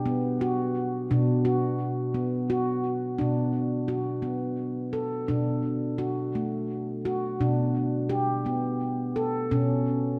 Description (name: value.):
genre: world meditative, meditative tuned percussion.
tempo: 86 BPM.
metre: 3/4.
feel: swing 54% on 16ths.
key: B minor.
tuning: A4 = 442 Hz.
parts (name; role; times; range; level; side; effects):
handpan; solo; 0.0-10.2 s; B2 to A4; -28 LUFS; equal; diffuse ambient delay.
room: wet concert hall reverb, RT60 1.8 s.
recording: none.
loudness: -28 LUFS.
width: mono.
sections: 0.0-3.2 A section; 3.2-10.2 B section.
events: none.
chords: 0.0 N.C.; 1.1 Bm; 7.4 G/B; 9.5 N.C..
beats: 0.41 | 1.11 1.80 2.50 | 3.20 3.90 4.60 | 5.30 6.00 6.70 | 7.41 8.11 8.81 | 9.51.